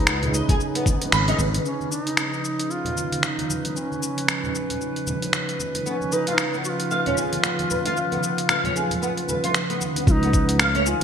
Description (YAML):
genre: organic downtempo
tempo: 114 BPM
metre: 4/4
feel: swing 59% on 16ths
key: Db mixolydian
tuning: A4 = 441 Hz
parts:
  - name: bright reedy bass bansuri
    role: melody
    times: 0.0-11.0 s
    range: Db4 to Gb4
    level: -29 LUFS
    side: equal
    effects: ping-pong delay
  - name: warm analog pad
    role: sustained chords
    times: 0.0-11.0 s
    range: Db3 to Cb5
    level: -29 LUFS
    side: right 1 dB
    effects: chorus, sidechain pumping
  - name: sustaining fretless electric bass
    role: bass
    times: 0.0-1.6, 10.1-10.9 s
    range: Ab1 to Db2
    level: -23 LUFS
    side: equal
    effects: lush chorus, sidechain pumping
  - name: flamenco guitar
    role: arpeggios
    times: 0.1-1.5, 5.9-11.0 s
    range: Cb4 to Cb6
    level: -26 LUFS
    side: equal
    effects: ensemble chorus, ping-pong delay
  - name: dusty soul sampler-style drum kit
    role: drums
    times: 0.1-11.0 s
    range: cabasa, finger snaps, hi-hat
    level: -24 LUFS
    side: equal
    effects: overdrive, studio reverb, gated reverb
  - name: bongos and congas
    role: percussion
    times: 0.1-10.0 s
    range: none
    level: -33 LUFS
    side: right 2 dB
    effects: none
  - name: electronic kick drum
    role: drums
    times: 0.5-1.5, 10.1-10.5 s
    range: none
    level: -20 LUFS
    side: equal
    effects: overdrive, studio reverb
  - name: drifting glass-harmonics texture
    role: texture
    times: 2.6-11.0 s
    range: Cb5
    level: -34 LUFS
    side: right 2 dB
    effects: chorus, built-in reverb
room: moderate plate reverb, RT60 2.8 s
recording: bright 1980s-style digital production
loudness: -20 LUFS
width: side -8 dB against mid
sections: 0.0-1.6 A section; 1.6-10.1 B section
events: band accent 1.1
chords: 0.0 Abm; 1.6 Db7